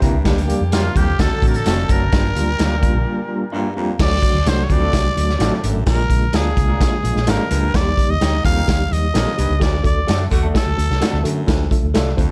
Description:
uptempo 1960s-style soul; 128 BPM; 4/4; straight; A4 = 442 Hz
mellow tine electric piano; accompaniment; 0.0-12.3 s; F#3 to Bb5; -26 LUFS; equal; medium tremolo
raspy baritone saxophone; riff; 0.0-12.3 s; D2 to Bb2; -31 LUFS; equal
electric guitar through a small old amp; stabs; 0.0-12.1 s; F#3 to Bb4; -31 LUFS; equal; spring reverb
vintage muted fingered electric bass; bass; 0.0-12.3 s; F1 to D3; -22 LUFS; equal
raw garage drum kit; drums; 0.0-12.3 s; crash cymbal, hi-hat, kick drum, snare drum; -21 LUFS; equal
clear saxophone section; second line; 0.2-3.7, 10.3-10.5 s; Bb2 to A4; -34 LUFS; equal
growling trumpet; melody; 0.7-11.2 s; F4 to F5; -26 LUFS; equal
glockenspiel with brass mallets; second line; 0.7-3.5 s; F6 to Bb6; -36 LUFS; equal
studio reverb; -18 LUFS; mono
0.0-4.0 A section; 4.0-12.3 B section
break 3.1-4.0; tine electric piano fill 3.1-4.0; band accent 9.6-11.5
0.3 Gm/D; 1.2 D7; 2.1 Gm7; 4.0 D; 5.9 Bb7; 7.7 Eb; 9.6 D; 11.5 Dm

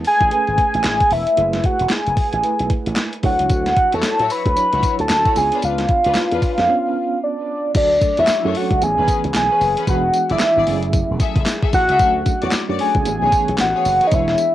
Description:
R&B, new jack swing; 113 BPM; 4/4; swing 61% on 16ths; A4 = 440 Hz
FM electric piano with tremolo; accompaniment; 0.0-14.5 s; E3 to C#5; -27 LUFS; right 8 dB; cassette tape
slap bass with an envelope filter; bass; 0.0-14.3 s; E1 to A2; -24 LUFS; equal
crisp 8-bit digital drum machine; drums; 0.0-14.5 s; crash cymbal, handclaps, hi-hat, kick drum, snare drum, tambourine; -21 LUFS; equal; overdrive, cassette tape
warm velvety synth lead; melody; 0.1-14.5 s; D5 to B5; -17 LUFS; equal; chorus, tremolo, cassette tape
rich symphonic string section; stabs; 3.9-14.2 s; C#4 to E5; -28 LUFS; left 10 dB; cassette tape
light reverb; home recording on cassette; -15 LUFS; side -13 dB against mid
0.0-7.7 A section; 7.7-14.5 B section
break 6.7-7.7
0.0 Amaj9; 1.4 F#m11; 3.2 Dmaj9; 5.4 C#7b9; 7.7 Dmaj7; 8.8 Amaj9; 9.9 E7; 10.7 F#m9; 12.0 Dmaj7; 13.1 Amaj9

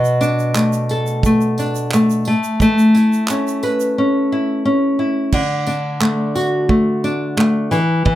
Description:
acoustic pop; 88 BPM; 4/4; straight; D major; A4 = 439 Hz
nylon-string guitar; accompaniment; 0.0-8.2 s; B2 to B4; -14 LUFS; equal
tube shaker; percussion; 0.0-4.0 s; -34 LUFS; right 12 dB
natural country drum kit; drums; 0.2-8.2 s; crash cymbal, handclaps, kick drum, tambourine; -22 LUFS; right 2 dB
light reverb; -14 LUFS; side -14 dB against mid
0.0-5.3 A section; 5.3-8.2 A section
break 4.0-5.3
0.0 Bm7; 2.3 Aadd9; 5.3 D

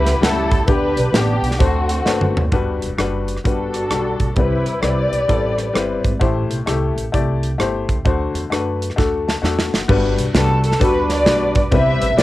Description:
uptempo gospel; 130 BPM; 4/4; swing 64% on 8ths; G major; A4 = 442 Hz
muted studio string section; melody; 0.0-6.1, 10.4-12.2 s; A3 to E5; -20 LUFS; equal; cassette tape
clear upright piano; accompaniment; 0.0-12.2 s; G2 to A5; -21 LUFS; left 4 dB; cassette tape
upright bass; bass; 0.0-12.2 s; E1 to F#2; -22 LUFS; right 1 dB
modern studio drum kit; drums; 0.1-12.2 s; crash cymbal, hi-hat, kick drum, rim click, snare drum, toms; -20 LUFS; right 1 dB; cassette tape
light reverb; home recording on cassette; -15 LUFS; side -16 dB against mid
0.0-2.5 A section; 2.5-9.9 B section; 9.9-12.2 A section
drum fill 2.1-2.5, 9.0-9.9; upright piano fill 9.0-9.9
0.0 A7; 0.7 G; 1.6 D7; 2.5 Gmaj7; 4.4 Cmaj7; 6.2 Am7; 8.1 D7; 9.9 Gmaj7; 11.7 Cmaj7

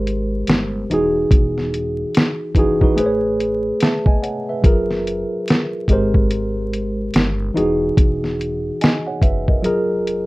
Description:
lo-fi hip hop; 72 BPM; 4/4; swing 63% on 16ths; A4 = 440 Hz
mellow tine electric piano; accompaniment; 0.0-10.3 s; E3 to A5; -19 LUFS; equal; medium stereo tremolo, cassette tape, low-pass filter, plate reverb
upright bass; bass; 0.0-10.3 s; E1 to A1; -26 LUFS; equal
lo-fi sampler-style drum kit; drums; 0.1-10.3 s; hi-hat, kick drum, snare drum; -15 LUFS; equal; vintage 12-bit sampler grit
wet small room reverb, RT60 0.5 s; rough home demo mix, vinyl crackle; -16 LUFS; side -21 dB against mid
0.0-10.3 A section
tine electric piano fill 10.1
0.0 G#maj9; 0.9 Emaj9; 3.0 Amaj9; 4.6 F#maj9; 5.9 G#maj9; 7.6 Emaj9; 9.6 F#maj9

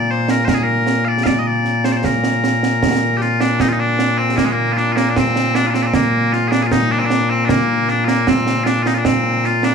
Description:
scottish traditional, Scottish pipe music; 77 BPM; 2/4; straight; Bb major; A4 = 440 Hz
loud bright bagpipes; melody; 0.0-9.7 s; Bb2 to F5; -15 LUFS; left 1 dB
concert snare drum and concert bass drum; drums; 0.3-9.7 s; -20 LUFS; right 4 dB
light reverb; small room ambience; -14 LUFS; side -6 dB against mid
0.0-3.6 A section; 3.6-9.7 B section

